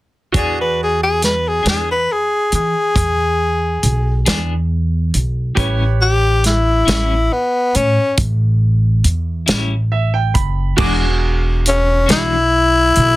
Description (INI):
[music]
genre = slow blues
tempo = 46 BPM (dotted quarters)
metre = 12/8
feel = straight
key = E mixolydian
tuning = A4 = 440 Hz
[part]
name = bright grand piano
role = accompaniment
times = 0.3-13.2 s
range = F#4 to D6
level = -24 LUFS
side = right 8 dB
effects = none
[part]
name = clean electric guitar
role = accompaniment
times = 0.3-12.4 s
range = A2 to G#4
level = -22 LUFS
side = left 4 dB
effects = tremolo
[part]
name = upright bass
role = bass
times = 0.3-13.2 s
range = E1 to E3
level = -17 LUFS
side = equal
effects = none
[part]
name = warm soul drum kit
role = drums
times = 0.3-13.2 s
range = crash cymbal, hi-hat, kick drum, snare drum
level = -18 LUFS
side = equal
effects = none
[part]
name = growling tenor saxophone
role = melody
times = 0.4-13.2 s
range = B3 to B4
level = -15 LUFS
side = left 2 dB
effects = none
[sound]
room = light reverb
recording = dense, heavily limited modern master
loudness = -14 LUFS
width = side -18 dB against mid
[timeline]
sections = 0.3-10.8 A section; 10.8-13.2 B section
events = grand piano fill 9.5-10.8; tenor saxophone solo 10.8-13.2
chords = 0.3 E7; 5.6 A7; 10.8 E9